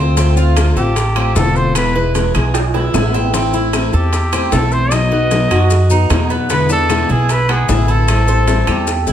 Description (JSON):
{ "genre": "latin, Cuban son and guajira", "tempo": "152 BPM", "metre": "4/4", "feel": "straight", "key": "A minor", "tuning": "A4 = 440 Hz", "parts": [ { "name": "picked plugged-in steel-string acoustic guitar", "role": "accompaniment", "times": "0.0-9.1 s", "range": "B2 to F#4", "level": "-19 LUFS", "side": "left 5 dB", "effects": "none" }, { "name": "Cuban tres", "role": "arpeggios", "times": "0.0-9.1 s", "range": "B3 to C5", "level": "-21 LUFS", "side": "right 4 dB", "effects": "none" }, { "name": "upright bass", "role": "bass", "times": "0.0-9.1 s", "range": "E1 to F#2", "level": "-15 LUFS", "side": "right 1 dB", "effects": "none" }, { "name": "bongos", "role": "percussion", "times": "0.2-9.1 s", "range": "none", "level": "-25 LUFS", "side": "left 5 dB", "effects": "none" }, { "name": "maracas", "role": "percussion", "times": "0.2-9.1 s", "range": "none", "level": "-28 LUFS", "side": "left 6 dB", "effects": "none" }, { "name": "timbales", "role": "percussion", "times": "0.2-8.9 s", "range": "none", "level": "-24 LUFS", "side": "right 6 dB", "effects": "none" }, { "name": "claves", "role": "percussion", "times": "0.6-8.9 s", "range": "none", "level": "-30 LUFS", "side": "left 6 dB", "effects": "none" }, { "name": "warm trumpet", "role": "melody", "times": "0.8-9.1 s", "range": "G4 to D#5", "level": "-19 LUFS", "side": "equal", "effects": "none" } ], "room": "moderate large studio reverb, RT60 1.3 s", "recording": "none", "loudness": "-12 LUFS", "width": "side -10 dB against mid", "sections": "0.0-9.1 A section", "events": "drum fill 2.5-3.3", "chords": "0.2 Dm7; 1.8 E; 3.3 Am; 4.9 B; 6.5 E7; 8.1 Am7" }